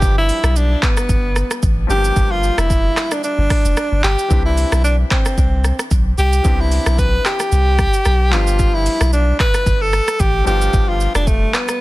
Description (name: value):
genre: afrobeats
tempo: 112 BPM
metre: 4/4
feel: swing 55% on 16ths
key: unclear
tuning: A4 = 440 Hz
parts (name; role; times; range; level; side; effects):
- breathy tenor saxophone; melody; 0.0-11.8 s; A3 to B4; -19 LUFS; equal; ping-pong delay
- clear baby grand piano; accompaniment; 0.0-11.8 s; E3 to B4; -29 LUFS; left 3 dB; none
- punchy sub bass; bass; 0.0-11.5 s; F1 to C2; -16 LUFS; equal; none
- afro-pop drum kit; drums; 0.0-11.8 s; handclaps, hi-hat, kick drum, rim click, shaker; -18 LUFS; equal; none
room: digital ambience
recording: dense, heavily limited modern master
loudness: -13 LUFS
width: side -18 dB against mid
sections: 0.0-11.8 A section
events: none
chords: 0.0 G7; 4.3 Cmaj9; 8.3 G7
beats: | 0.02 0.56 1.09 1.63 | 2.16 2.70 3.23 3.77 | 4.31 4.84 5.38 5.91 | 6.45 6.99 7.52 8.06 | 8.59 9.13 9.66 10.20 | 10.73 11.27 11.81